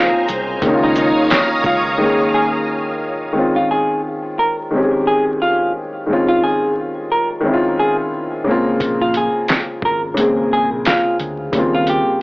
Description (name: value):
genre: lo-fi hip hop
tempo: 88 BPM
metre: 4/4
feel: swing 56% on 16ths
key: Db major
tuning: A4 = 440 Hz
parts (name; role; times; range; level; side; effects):
- vintage hollow-body jazz guitar; melody; 0.0-12.2 s; Eb4 to Bb4; -18 LUFS; equal; cassette tape, analog delay, plate reverb
- warm upright piano; accompaniment; 0.0-12.2 s; Db3 to Ab4; -18 LUFS; left 1 dB; cassette tape, plate reverb
- string machine, full ensemble; sustained chords; 0.0-3.3 s; C5 to Eb6; -20 LUFS; right 1 dB; ensemble chorus, cassette tape, plate reverb
- deep dub fingered electric bass; bass; 0.3-2.0, 8.8-12.0 s; Ab1 to Eb2; -29 LUFS; equal; none
- dusty soul sampler-style drum kit; drums; 0.3-1.8, 8.8-12.0 s; handclaps, hi-hat, kick drum, shaker, snare drum; -18 LUFS; equal; overdrive, cassette tape
room: moderate studio reverb, RT60 0.6 s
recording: home recording on cassette, vinyl crackle, AM radio sound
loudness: -14 LUFS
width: side -24 dB against mid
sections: 0.0-3.4 A section; 3.4-12.2 B section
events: break 2.0-3.4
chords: 0.0 Bbm9; 0.6 Db69; 3.4 Dbmaj7; 8.5 Bbm9; 11.5 Eb13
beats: | 0.62 1.30 1.99 2.67 | 3.35 4.03 4.71 5.40 | 6.08 6.76 7.44 8.12 | 8.80 9.49 10.17 10.85 | 11.53 12.21